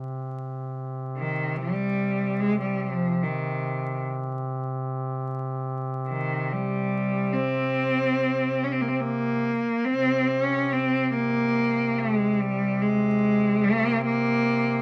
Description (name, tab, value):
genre	caucasian folk, Caucasian lament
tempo	72 BPM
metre	3/4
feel	rubato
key	C phrygian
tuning	A4 = 440 Hz
part	warm duduk	drone	0.0-14.8 s	C3	-32 LUFS	equal	none
part	rich cello	melody	1.2-14.8 s	Eb3 to Db4	-26 LUFS	equal	none
room	moderate studio reverb, RT60 0.7 s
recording	vinyl crackle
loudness	-26 LUFS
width	mono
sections	0.0-9.9 A section; 9.9-14.8 B section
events	none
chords	none